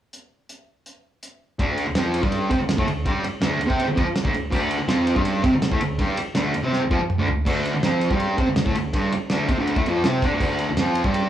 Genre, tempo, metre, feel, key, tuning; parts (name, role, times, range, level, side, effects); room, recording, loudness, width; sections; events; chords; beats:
garage rock duo or trio; 163 BPM; 4/4; straight; A4 = 436 Hz
cloth-damped thuddy drum kit; drums; 0.1-11.2 s; crash cymbal, hi-hat, kick drum, ride cymbal, snare drum, toms; -25 LUFS; equal
fuzz guitar; riff; 1.6-11.3 s; D2 to D4; -21 LUFS; right 1 dB; distortion
light reverb; band playing live in one room, small room ambience; -19 LUFS; side -11 dB against mid
0.1-1.6 A section; 1.6-11.3 B section
drum fill 6.7-7.5
0.1 N.C.; 1.6 D5
| 0.12 0.49 0.86 1.22 | 1.59 1.96 2.32 2.69 | 3.06 3.42 3.79 4.16 | 4.53 4.90 5.26 5.63 | 6.00 6.37 6.74 7.10 | 7.47 7.84 8.21 8.57 | 8.94 9.31 9.67 10.04 | 10.41 10.77 11.14